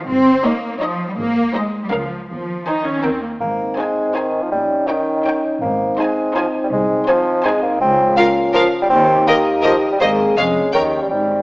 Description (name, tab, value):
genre	cinematic, playful, whimsical film cue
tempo	164 BPM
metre	3/4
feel	straight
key	Ab major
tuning	A4 = 442 Hz
part	warm symphonic cello section	bass	0.0-11.4 s	C2 to C4	-21 LUFS	equal	none
part	warm studio double bass section	bass	0.1-11.4 s	F1 to Eb2	-29 LUFS	equal	none
part	rich studio violin section	melody	0.4-10.8 s	Eb5 to Ab5	-24 LUFS	left 1 dB	none
part	rich studio violin section	second line	0.4-10.8 s	Bb4 to Db5	-23 LUFS	equal	none
part	warm studio viola section	accompaniment	0.4-10.8 s	Bb3 to Bb4	-24 LUFS	equal	none
part	warm bassoon	accompaniment	3.4-11.4 s	Eb3 to C4	-17 LUFS	equal	none
part	dark French horn section	sustained chords	3.4-11.4 s	C4 to Ab4	-20 LUFS	left 1 dB	none
room	wet scoring stage reverb, RT60 1.5 s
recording	small speaker sound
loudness	-14 LUFS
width	side -24 dB against mid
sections	0.0-3.4 A section; 3.4-11.4 B section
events	none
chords	0.1 Eb7/G; 1.2 Ab; 1.9 Bbm/Db; 2.3 Ab/Eb; 3.0 Eb; 3.4 Ab; 4.5 Eb7/Bb; 5.6 Ab; 6.7 Ab/C; 7.8 Bbm/Db; 8.9 Eb; 10.0 Ab; 10.4 Db/F; 10.7 Eb7